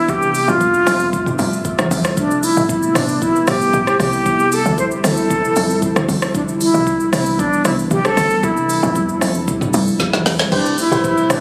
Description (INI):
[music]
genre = amapiano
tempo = 115 BPM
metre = 4/4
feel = straight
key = unclear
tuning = A4 = 439 Hz
[part]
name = mellow hollow silver concert flute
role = melody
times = 0.0-11.4 s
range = D4 to C5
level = -19 LUFS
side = equal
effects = delay
[part]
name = glassy FM pad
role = sustained chords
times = 0.0-11.4 s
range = B2 to E5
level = -25 LUFS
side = equal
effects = ensemble chorus, built-in reverb
[part]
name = woody log drum bass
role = bass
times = 0.0-11.4 s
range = A1 to G2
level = -24 LUFS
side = equal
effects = none
[part]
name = deep house drum kit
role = drums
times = 0.1-11.4 s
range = crash cymbal, hi-hat, kick drum, rim click, shaker, snare drum, toms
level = -23 LUFS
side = equal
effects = none
[part]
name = glassy wavetable pluck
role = stabs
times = 10.5-11.4 s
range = G4 to C5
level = -24 LUFS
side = equal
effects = chorus, phaser, delay
[part]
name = agogo bells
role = percussion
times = 10.5-11.3 s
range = none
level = -30 LUFS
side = equal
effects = none
[sound]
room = light reverb, digital ambience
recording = recorded on a phone in the room, club reverb, compression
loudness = -16 LUFS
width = mono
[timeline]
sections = 0.0-11.4 A section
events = drum fill 10.0-10.5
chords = 0.1 Fmaj9; 2.2 Am9; 4.3 Dm11; 6.3 Cmaj9; 8.4 Fmaj9; 10.5 Am9